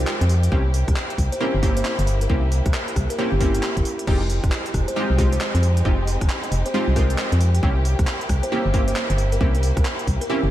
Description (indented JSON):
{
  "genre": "UK garage, two-step garage",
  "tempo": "135 BPM",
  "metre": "4/4",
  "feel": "swing 63% on 16ths",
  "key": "F minor",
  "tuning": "A4 = 440 Hz",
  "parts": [
    { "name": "kalimba", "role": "melody", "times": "0.0-10.5 s", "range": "E4 to Eb5", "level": "-29 LUFS", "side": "equal", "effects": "analog delay" },
    { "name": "dark symphonic violin section", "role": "sustained chords", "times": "0.0-10.5 s", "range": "Ab3 to G4", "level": "-32 LUFS", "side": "left 1 dB", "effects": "sidechain pumping" },
    { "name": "punchy chord stab", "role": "stabs", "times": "0.0-10.4 s", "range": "Ab3 to G4", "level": "-26 LUFS", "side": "right 1 dB", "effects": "chorus, analog delay" },
    { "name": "organ-like FM bass", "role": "bass", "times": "0.0-10.5 s", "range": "F1 to F2", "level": "-20 LUFS", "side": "equal", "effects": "sidechain pumping" },
    { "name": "garage drum kit", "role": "drums", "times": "0.1-10.3 s", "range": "crash cymbal, handclaps, hi-hat, rim click", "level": "-30 LUFS", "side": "equal", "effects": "none" },
    { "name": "electronic kick drum", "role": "drums", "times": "0.5-10.2 s", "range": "none", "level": "-23 LUFS", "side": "equal", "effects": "none" }
  ],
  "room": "light reverb",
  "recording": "vinyl crackle",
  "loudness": "-18 LUFS",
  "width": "side -13 dB against mid",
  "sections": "0.0-10.5 A section",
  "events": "none",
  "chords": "0.0 Fm9; 0.5 C7b9; 4.1 Fm9; 7.6 C7b9"
}